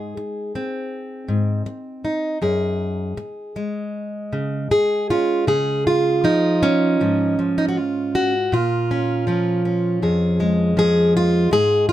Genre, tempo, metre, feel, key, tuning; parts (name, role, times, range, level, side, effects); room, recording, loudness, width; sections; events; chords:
folk, solo fingerstyle acoustic guitar; 80 BPM; 4/4; straight; Db major; A4 = 441 Hz
fingerpicked plugged-in steel-string acoustic guitar; solo; 0.0-11.9 s; F2 to Ab4; -18 LUFS; equal
light reverb; -18 LUFS; side -13 dB against mid
0.0-5.5 A section; 5.5-11.9 B section
0.0 Ab; 2.4 Gbsus2; 5.5 Db; 8.5 Bbm7